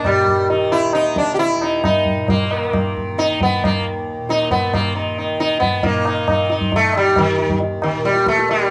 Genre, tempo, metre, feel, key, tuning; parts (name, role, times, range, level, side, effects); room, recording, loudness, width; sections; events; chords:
indian classical, Hindustani; 135 BPM; 4/4; straight; Eb major; A4 = 440 Hz
sitar; melody; 0.0-8.7 s; Eb3 to G4; -19 LUFS; equal
tanpura; drone; 0.0-8.7 s; Eb2 to Eb3; -28 LUFS; equal
tabla; percussion; 0.0-8.7 s; -24 LUFS; equal
moderate small room reverb, RT60 0.6 s; -18 LUFS; mono
0.0-5.8 A section; 5.8-8.7 B section